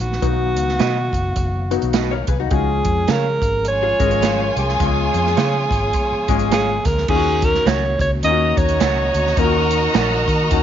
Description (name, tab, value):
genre	uptempo 1960s-style soul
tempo	105 BPM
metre	4/4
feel	swing 59% on 8ths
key	unclear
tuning	A4 = 440 Hz
part	clear alto saxophone	melody	0.0-10.6 s	F#4 to D#5	-20 LUFS	right 2 dB	none
part	mellow tonewheel organ	sustained chords	0.0-10.6 s	D#3 to E#5	-30 LUFS	equal	chorus vibrato, stopped rotary speaker
part	vintage muted fingered electric bass	bass	0.0-10.6 s	F#1 to D#3	-22 LUFS	left 1 dB	none
part	swinging big-band drum kit	drums	0.1-10.6 s	crash cymbal, hi-hat, kick drum, snare drum	-22 LUFS	right 2 dB	none
part	warm grand piano	accompaniment	0.2-10.6 s	F#3 to G#4	-23 LUFS	left 15 dB	none
part	electric guitar through a small old amp	stabs	0.8-10.1 s	F#4 to F#5	-28 LUFS	right 12 dB	none
part	vintage hollow-body jazz guitar	riff	2.1-4.9 s	D#4 to C#5	-27 LUFS	left 12 dB	none
part	rich studio violin section	second line	3.7-10.6 s	E#4 to A#5	-24 LUFS	equal	none
room	light reverb, studio reverb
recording	1960s-style stereo with parts hard left and right, nothing above 7.5 kHz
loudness	-16 LUFS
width	side -10 dB against mid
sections	0.0-7.1 A section; 7.1-10.6 B section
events	none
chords	0.0 B; 2.5 C#; 7.1 D#m7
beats	| 0.23 0.80 1.37 1.95 | 2.52 3.09 3.66 4.24 | 4.81 5.38 5.95 6.52 | 7.09 7.66 8.24 8.81 | 9.38 9.95 10.52